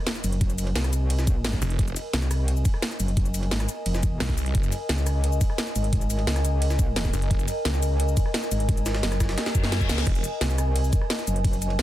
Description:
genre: dark technical drum and bass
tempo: 174 BPM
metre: 4/4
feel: straight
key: F phrygian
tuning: A4 = 440 Hz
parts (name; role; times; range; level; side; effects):
- impact and reverse cymbal; sound effects; 0.0-0.4, 9.5-10.1 s; none; -37 LUFS; left 4 dB; none
- warbly tape-like pad; texture; 0.0-11.8 s; Bb4 to Ab5; -33 LUFS; equal; chorus, built-in reverb, sidechain pumping
- drum and bass drum kit; drums; 0.1-11.8 s; crash cymbal, hi-hat, rim click, shaker, snare drum; -30 LUFS; equal; none
- jungle sampler-style drum kit; drums; 0.1-11.8 s; hi-hat, ride cymbal, snare drum; -37 LUFS; equal; high-pass filter on cymbals, high-pass filter on snare, high-pass filter on hats
- metallic wobble bass; bass; 0.2-11.8 s; F1 to Gb2; -24 LUFS; equal; chorus, tube saturation
- electronic kick drum; drums; 0.4-11.5 s; none; -24 LUFS; equal; none
- snarling distorted saw bass; bass; 1.6-1.9, 4.2-4.7, 7.1-7.5, 10.1-10.2 s; F1 to C2; -26 LUFS; equal; distortion, tube saturation
room: digital ambience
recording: dense, heavily limited modern master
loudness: -22 LUFS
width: side -14 dB against mid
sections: 0.0-11.8 A section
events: impact 0.0-0.4; drum fill 9.4-10.1; reverse cymbal 9.5-10.1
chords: 0.0 Fm7; 4.5 Gb; 10.1 Fm7 (rootless)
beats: 0.07 | 0.41 0.76 1.10 1.45 | 1.79 2.13 2.48 2.82 | 3.17 3.51 3.86 4.20 | 4.55 4.89 5.24 5.58 | 5.93 6.27 6.62 6.96 | 7.31 7.65 8.00 8.34 | 8.69 9.03 9.38 9.72 | 10.07 10.41 10.76 11.10 | 11.45 11.79

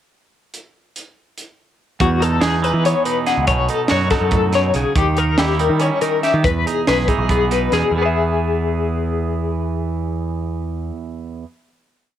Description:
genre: math rock and midwest emo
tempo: 283 BPM (eighths)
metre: 7/8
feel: straight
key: E major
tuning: A4 = 440 Hz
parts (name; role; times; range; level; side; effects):
- crisp fusion drum kit; drums; 0.5-7.8 s; hi-hat, kick drum, snare drum; -22 LUFS; right 1 dB; cassette tape
- twangy electric guitar; accompaniment; 2.0-11.5 s; E2 to G#4; -22 LUFS; right 8 dB; none
- twelve-string electric guitar; arpeggios; 2.0-11.0 s; F#4 to F#5; -20 LUFS; left 7 dB; tremolo
- growling picked electric bass; bass; 2.0-10.9 s; B1 to E3; -20 LUFS; equal; overdrive
room: light reverb, small room ambience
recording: home recording on cassette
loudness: -16 LUFS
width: side -10 dB against mid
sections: 0.5-2.0 pickup bar; 2.0-7.9 A section; 7.9-10.9 final chord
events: none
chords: 0.5 N.C.; 2.0 Emaj9; 3.5 B13; 5.0 D#7b9; 6.4 Emaj7; 7.9 E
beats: | 0.52 0.73 0.94 1.16 1.36 1.57 1.79 | 2.00 2.21 2.42 2.63 2.84 3.05 3.26 | 3.47 3.68 3.90 4.11 4.32 4.53 4.74 | 4.96 5.17 5.38 5.59 5.80 6.02 6.23 | 6.44 6.66 6.87 7.08 7.29 7.51 7.72 | 7.93 8.15 8.36 8.57 8.78 9.00 9.21 | 9.42 9.63 9.85 10.06 10.27 10.48 10.70

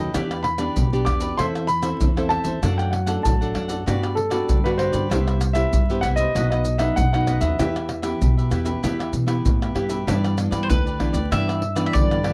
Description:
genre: samba and choro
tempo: 97 BPM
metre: 4/4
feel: straight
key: E minor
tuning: A4 = 440 Hz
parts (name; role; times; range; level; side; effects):
- warm grand piano; melody; 0.0-9.4 s; A4 to D6; -27 LUFS; equal; none
- cavaquinho; accompaniment; 0.0-12.3 s; D4 to F#5; -34 LUFS; equal; none
- nylon-string guitar; accompaniment; 0.0-12.3 s; F#2 to A4; -28 LUFS; equal; none
- upright bass; bass; 0.0-12.3 s; A1 to B2; -27 LUFS; equal; none
- maracas, surdo, pandeiro and tamborim; percussion; 0.1-12.3 s; none; -26 LUFS; equal; none
- bowl-back mandolin; second line; 10.6-12.3 s; B4 to E5; -28 LUFS; equal; none
room: light reverb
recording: dry, close 1970s-style studio recording, vinyl crackle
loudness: -22 LUFS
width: mono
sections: 0.0-10.1 A section; 10.1-12.3 B section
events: mandolin solo 10.1-12.3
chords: 0.1 Em7; 1.4 Am/E; 2.6 D/F#; 3.9 Gmaj7; 5.1 Cmaj7; 6.4 B; 7.6 Em; 10.1 G6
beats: | 0.15 0.77 1.39 2.01 | 2.63 3.25 3.87 4.49 | 5.11 5.73 6.35 6.97 | 7.59 8.22 8.84 9.46 | 10.08 10.70 11.32 11.95

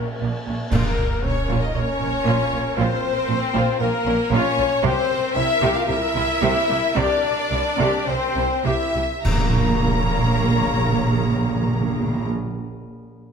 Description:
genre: cinematic, epic orchestral film score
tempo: 100-117 BPM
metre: 4/4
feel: straight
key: Bb minor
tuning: A4 = 440 Hz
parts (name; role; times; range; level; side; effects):
- clear studio violin section; melody; 0.0-12.3 s; Bb4 to Bb5; -28 LUFS; left 3 dB; none
- clear symphonic violin section; second line; 0.0-12.3 s; Db4 to Bb5; -29 LUFS; left 2 dB; none
- mellow hollow concert flute; second line; 0.0-12.3 s; Bb4 to Bb5; -28 LUFS; left 2 dB; none
- rich symphonic viola section; accompaniment; 0.0-12.3 s; F3 to Db5; -28 LUFS; right 1 dB; none
- warm French horn section; sustained chords; 0.0-12.3 s; Bb3 to Bb4; -26 LUFS; left 5 dB; none
- clear symphonic double bass section; bass; 0.0-12.3 s; Bb1 to C2; -26 LUFS; right 4 dB; none
- rich symphonic cello section; bass; 0.0-12.3 s; Bb2 to C3; -26 LUFS; right 4 dB; none
- clash cymbals and concert bass drum; percussion; 0.7-1.7, 9.3-10.4 s; none; -26 LUFS; equal; none
- timpani; percussion; 0.7-1.5, 9.2-12.3 s; Bb2; -24 LUFS; equal; none
room: wet recital hall reverb, RT60 1.7 s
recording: none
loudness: -18 LUFS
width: side -6 dB against mid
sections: 0.7-9.2 A section; 9.2-13.3 B section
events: band accent 0.7-1.2, 9.2-9.8; slowing down 3.8-9.2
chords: 0.0 Bbm; 4.8 C7; 9.2 Bbm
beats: 0.21 | 0.73 1.24 1.75 2.27 | 2.78 3.29 3.80 4.32 | 4.83 5.35 5.88 6.41 | 6.96 7.51 8.07 8.65 | 9.25 9.85 10.45 11.06 | 11.66 12.26

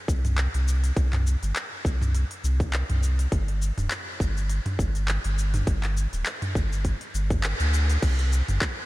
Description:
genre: organic downtempo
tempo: 102 BPM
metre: 4/4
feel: swing 56% on 16ths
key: unclear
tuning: A4 = 440 Hz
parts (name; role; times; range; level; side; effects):
- warm sub bass; bass; 0.1-8.6 s; D1 to D2; -24 LUFS; equal; tube saturation, sidechain pumping
- electronic kick drum; drums; 0.1-8.7 s; none; -26 LUFS; equal; none
- organic electronic drum kit; drums; 0.1-8.8 s; cabasa, crash cymbal, handclaps, hi-hat, toms; -30 LUFS; equal; none
room: light reverb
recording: none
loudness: -23 LUFS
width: side -18 dB against mid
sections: 0.0-8.0 A section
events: band accent 7.4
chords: none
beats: 0.38 | 0.97 1.55 2.14 2.73 | 3.32 3.91 4.50 5.08 | 5.67 6.26 6.85 7.44 | 8.03 8.61

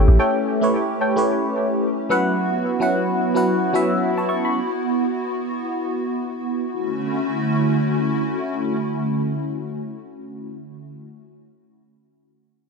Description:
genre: amapiano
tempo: 110 BPM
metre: 4/4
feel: swing 58% on 16ths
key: D major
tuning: A4 = 439 Hz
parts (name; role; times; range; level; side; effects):
- barking FM electric piano; accompaniment; 0.0-4.7 s; F#3 to C#6; -21 LUFS; equal; phaser
- hollow soft pad; sustained chords; 0.0-11.0 s; D3 to G4; -23 LUFS; right 1 dB; ensemble chorus
- deep mellow chord stab; stabs; 0.0-2.2 s; A4 to G5; -25 LUFS; left 2 dB; chorus, digital delay
room: light reverb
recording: none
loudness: -19 LUFS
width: side -4 dB against mid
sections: 0.0-6.7 A section; 6.7-11.1 B section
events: none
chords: 0.0 A7; 2.1 F#7sus4; 6.7 Dmaj9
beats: | 0.19 0.74 1.28 1.83 | 2.37 2.92 3.46 4.01 | 4.56 5.10 5.65 6.19 | 6.74 7.28 7.83 8.37 | 8.92 9.46 10.01 10.56

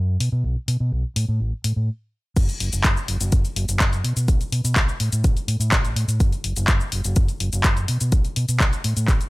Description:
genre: filtered disco house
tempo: 125 BPM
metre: 4/4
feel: straight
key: F# minor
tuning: A4 = 440 Hz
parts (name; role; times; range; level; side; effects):
- fingered electric bass; bass; 0.0-9.2 s; F#1 to B2; -22 LUFS; equal; sidechain pumping, low-pass filter
- punchy analog drum machine; drums; 0.2-9.3 s; crash cymbal, handclaps, hi-hat, shaker; -25 LUFS; left 1 dB; overdrive, sidechain pumping on hats, sidechain pumping on cymbals, sidechain pumping on perc
- electronic kick drum; drums; 2.4-9.2 s; none; -19 LUFS; equal; none
room: digital ambience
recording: none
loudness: -19 LUFS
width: side -21 dB against mid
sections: 0.0-2.4 A section; 2.4-9.3 B section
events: stop 1.9-2.4; drop 2.4-9.3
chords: none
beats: | 0.44 0.92 1.40 1.88 | 2.36 2.84 3.32 3.80 | 4.28 4.76 5.24 5.72 | 6.20 6.68 7.16 7.64 | 8.12 8.60 9.08

